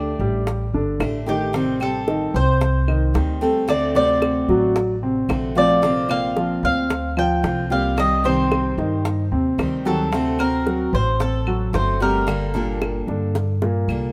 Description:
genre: latin, Cuban son and guajira.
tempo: 112 BPM.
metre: 4/4.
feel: straight.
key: unclear.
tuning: A4 = 440 Hz.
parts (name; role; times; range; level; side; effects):
Cuban tres; melody; 0.0-12.8 s; G4 to G5; -25 LUFS; equal; none.
picked steel-string acoustic guitar; accompaniment; 0.0-14.1 s; C3 to A4; -27 LUFS; equal; none.
warm grand piano; arpeggios; 0.0-14.1 s; Bb2 to C5; -26 LUFS; equal; none.
upright bass; bass; 0.0-14.1 s; G1 to G2; -26 LUFS; equal; none.
bongos; percussion; 0.2-13.7 s; none; -29 LUFS; equal; none.
claves; percussion; 1.0-14.1 s; none; -39 LUFS; equal; none.
room: light reverb.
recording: none.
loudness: -20 LUFS.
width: mono.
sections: 0.0-14.1 A section.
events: drum fill 13.3-14.1.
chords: 0.0 Dsus4; 1.5 Am7b5; 3.7 D7; 5.8 Bbadd9; 8.0 Cm; 10.1 D7; 12.3 Gmadd9.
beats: 0.47 1.00 | 1.54 2.08 2.61 3.15 | 3.69 4.22 4.76 5.29 | 5.83 6.37 6.90 7.44 | 7.98 8.52 9.05 9.59 | 10.13 10.66 11.20 11.74 | 12.28 12.81 13.35 13.89.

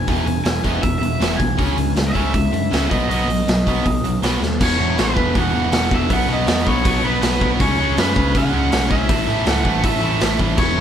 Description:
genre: punk rock.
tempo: 160 BPM.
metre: 4/4.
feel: straight.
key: E major.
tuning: A4 = 439 Hz.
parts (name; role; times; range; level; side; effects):
raw garage guitar; melody; 0.0-10.8 s; B4 to G#5; -23 LUFS; right 1 dB; overdrive.
sludgy distorted guitar; riff; 0.0-10.8 s; E2 to C#4; -23 LUFS; left 7 dB; overdrive.
sludgy distorted guitar; riff; 0.0-10.8 s; E2 to C#4; -23 LUFS; right 7 dB; overdrive.
overdriven picked electric bass; bass; 0.0-10.8 s; E1 to F#2; -23 LUFS; equal; none.
raw garage drum kit; drums; 0.1-10.7 s; crash cymbal, hi-hat, kick drum, snare drum; -20 LUFS; equal; none.
room: light reverb.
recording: band playing live in one room.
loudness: -16 LUFS.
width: side -9 dB against mid.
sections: 0.0-4.6 A section; 4.6-10.8 B section.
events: drum fill 4.4.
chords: 0.0 E; 1.6 C#m; 2.9 B; 4.6 E5; 6.1 B; 7.6 C#5; 9.1 A.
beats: | 0.08 0.46 0.83 1.21 | 1.59 1.97 2.35 2.72 | 3.10 3.48 3.85 4.23 | 4.61 4.98 5.36 5.73 | 6.11 6.48 6.86 7.23 | 7.61 7.98 8.35 8.73 | 9.10 9.47 9.85 10.22 | 10.59.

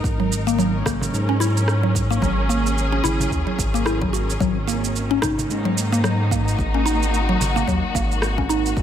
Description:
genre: organic downtempo.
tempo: 110 BPM.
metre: 4/4.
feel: swing 58% on 16ths.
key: unclear.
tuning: A4 = 439 Hz.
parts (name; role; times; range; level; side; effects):
muted studio string section; sustained chords; 0.0-8.8 s; C#3 to A#4; -26 LUFS; left 1 dB; sidechain pumping.
mallet-like synth pluck; arpeggios; 0.0-8.8 s; F#3 to F#4; -23 LUFS; equal; chorus, phaser, tape echo.
smooth synth bass; bass; 0.0-8.8 s; G#1 to G#2; -23 LUFS; equal; sidechain pumping.
electronic kick drum; drums; 0.0-8.8 s; none; -26 LUFS; equal; overdrive, small room ambience.
electronic shaker and rim click; drums; 0.1-8.8 s; none; -28 LUFS; right 3 dB; overdrive, small room ambience.
frame drum; percussion; 0.9-7.7 s; none; -31 LUFS; right 2 dB; none.
room: light reverb.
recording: none.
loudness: -18 LUFS.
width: side -9 dB against mid.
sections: 0.0-8.8 A section.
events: none.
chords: 0.0 F#7/G#; 4.4 D#m7/G#.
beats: | 0.04 0.59 1.13 1.68 | 2.22 2.77 3.31 3.86 | 4.41 4.95 5.50 6.04 | 6.59 7.13 7.68 8.22 | 8.77.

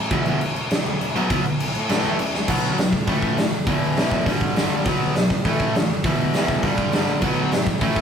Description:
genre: punk rock.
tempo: 202 BPM.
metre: 4/4.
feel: straight.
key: unclear.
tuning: A4 = 440 Hz.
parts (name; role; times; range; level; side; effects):
fuzz picked electric bass; bass; 0.0-8.0 s; E1 to B2; -32 LUFS; equal; none.
cranked stack guitar; riff; 0.1-8.0 s; E2 to B3; -25 LUFS; right 5 dB; overdrive.
overdriven electric guitar; riff; 0.1-8.0 s; E2 to B3; -24 LUFS; left 4 dB; none.
big rock drum kit; drums; 0.1-8.0 s; crash cymbal, hi-hat, kick drum, snare drum; -21 LUFS; equal; none.
room: moderate small room reverb, RT60 0.5 s.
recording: rough rehearsal-room recording, warm saturation.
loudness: -18 LUFS.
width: side -7 dB against mid.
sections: 0.0-2.5 A section; 2.5-8.0 B section.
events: half time 0.0-2.5; drum fill 2.3.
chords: 0.1 E5; 1.2 B5; 1.9 A; 2.5 B5; 2.9 A5; 3.7 E5; 4.3 G5; 4.9 B5; 5.3 A5; 6.0 E5; 6.6 G5; 7.2 B5.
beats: | 0.12 0.41 0.71 1.01 | 1.30 1.60 1.90 2.19 | 2.49 2.78 3.08 3.38 | 3.67 3.97 4.27 4.56 | 4.86 5.16 5.45 5.75 | 6.04 6.34 6.64 6.93 | 7.23 7.52 7.82.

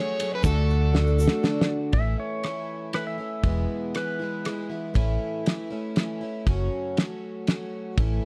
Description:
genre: folk rock and heartland rock.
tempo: 119 BPM.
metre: 3/4.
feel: straight.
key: A major.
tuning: A4 = 440 Hz.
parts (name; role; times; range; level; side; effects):
overdriven slide guitar; melody; 0.0-1.7 s; A4 to C#5; -31 LUFS; equal; none.
dark upright piano; accompaniment; 0.0-1.8 s; A3 to A4; -40 LUFS; equal; none.
picked plugged-in twelve-string acoustic guitar; accompaniment; 0.0-8.2 s; E2 to G#4; -33 LUFS; equal; none.
clear studio string section; sustained chords; 0.0-1.9 s; A3 to G#4; -42 LUFS; equal; none.
damped 70s drum kit; drums; 0.2-8.1 s; kick drum, ride cymbal, rim click, snare drum; -27 LUFS; equal; none.
tube shaker; percussion; 0.2-1.5 s; none; -47 LUFS; equal; none.
fingered electric bass; bass; 0.4-8.2 s; E1 to D2; -26 LUFS; equal; none.
pedal steel guitar; second line; 1.9-4.9 s; B4 to E5; -35 LUFS; equal; none.
room: light reverb.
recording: dry, close 1970s-style studio recording.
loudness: -26 LUFS.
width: mono.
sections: 0.0-1.9 A section; 1.9-8.2 B section.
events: drum fill 0.9-1.9.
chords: 0.4 D; 1.9 A; 3.4 E; 5.0 A; 6.5 F#m.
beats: | 0.44 0.94 1.44 | 1.94 2.44 2.94 | 3.44 3.94 4.45 | 4.95 5.46 5.96 | 6.47 6.97 7.47 | 7.98.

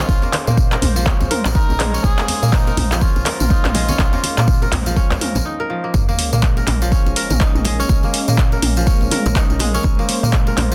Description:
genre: afro house.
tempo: 123 BPM.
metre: 4/4.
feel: swing 59% on 16ths.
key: Bb minor.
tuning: A4 = 440 Hz.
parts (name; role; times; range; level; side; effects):
trumpet with cup mute; melody; 0.0-5.5 s; Eb4 to Bb4; -29 LUFS; equal; dub echo.
warm analog pad; sustained chords; 0.0-10.7 s; Ab3 to C5; -30 LUFS; equal; chorus, sidechain pumping.
kora; arpeggios; 0.0-10.7 s; F3 to Bb4; -27 LUFS; equal; sidechain pumping, dub echo.
woody FM bass; bass; 0.0-10.7 s; Bb1 to Bb2; -22 LUFS; equal; sidechain pumping.
electronic kick drum; drums; 0.1-10.4 s; none; -19 LUFS; equal; none.
congas; percussion; 0.1-10.7 s; none; -30 LUFS; equal; none.
tambourine; percussion; 0.1-10.7 s; none; -32 LUFS; equal; none.
djembe; percussion; 0.2-5.4 s; none; -30 LUFS; equal; none.
deep house drum kit; drums; 0.3-10.7 s; handclaps, hi-hat, toms; -24 LUFS; equal; overdrive.
sub drop; sound effects; 6.0-7.9 s; none; -30 LUFS; equal; none.
room: small room ambience.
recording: dense, heavily limited modern master.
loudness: -17 LUFS.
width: mono.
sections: 0.0-5.9 A section; 5.9-10.7 B section.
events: break 5.5-5.9; drop 5.9-10.7; impact 5.9-7.9.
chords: 0.0 Bbm7.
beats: | 0.09 0.58 1.06 1.55 | 2.04 2.53 3.02 3.50 | 3.99 4.48 4.97 5.46 | 5.94 6.43 6.92 7.41 | 7.89 8.38 8.87 9.36 | 9.85 10.33.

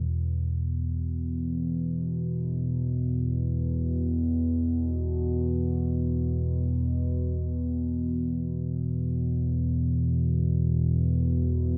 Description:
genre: ambient.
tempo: free time.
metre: none.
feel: none.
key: unclear.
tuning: A4 = 440 Hz.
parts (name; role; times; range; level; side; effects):
analog drone; solo; 0.0-11.8 s; E2 to B2; -27 LUFS; equal; chorus, delay.
room: moderate plate reverb, RT60 3.0 s.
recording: dreamy mix soaked in reverb.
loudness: -28 LUFS.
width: mono.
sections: 0.1-11.8 A section.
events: none.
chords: 0.1 E5.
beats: free time.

